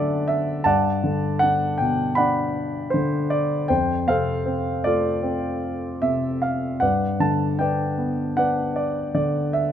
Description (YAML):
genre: classical, lyrical solo piano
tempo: 78 BPM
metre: 4/4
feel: rubato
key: G major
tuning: A4 = 440 Hz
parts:
  - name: warm concert grand piano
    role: solo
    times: 0.0-9.7 s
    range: F2 to B5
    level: -20 LUFS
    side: equal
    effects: none
room: light reverb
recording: close, detailed microphones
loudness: -20 LUFS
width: side -9 dB against mid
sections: 0.0-9.7 A section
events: none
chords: 0.0 D/F#; 0.7 Gmaj7; 3.7 F; 6.8 G